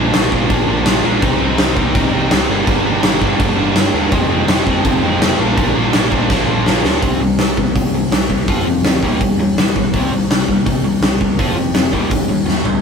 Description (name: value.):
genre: punk rock.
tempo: 165 BPM.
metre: 4/4.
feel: straight.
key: C minor.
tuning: A4 = 441 Hz.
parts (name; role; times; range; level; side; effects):
cranked stack guitar; riff; 0.0-12.8 s; F2 to F4; -17 LUFS; left 1 dB; overdrive.
overdriven picked electric bass; bass; 0.0-12.8 s; F1 to Eb2; -23 LUFS; right 1 dB; none.
big rock drum kit; drums; 0.1-12.7 s; crash cymbal, hi-hat, kick drum, snare drum, toms; -15 LUFS; equal; none.
room: light reverb.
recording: rough rehearsal-room recording.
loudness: -12 LUFS.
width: side -6 dB against mid.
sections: 0.0-7.0 A section; 7.0-12.8 B section.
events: drum fill 6.3-7.0, 12.5-12.8.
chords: 0.0 Bb; 1.2 Cm; 2.5 Gm; 4.1 Fm; 5.4 Bb; 7.0 C5; 8.5 F5; 9.0 Eb; 9.9 C5; 11.4 F5; 11.9 Eb.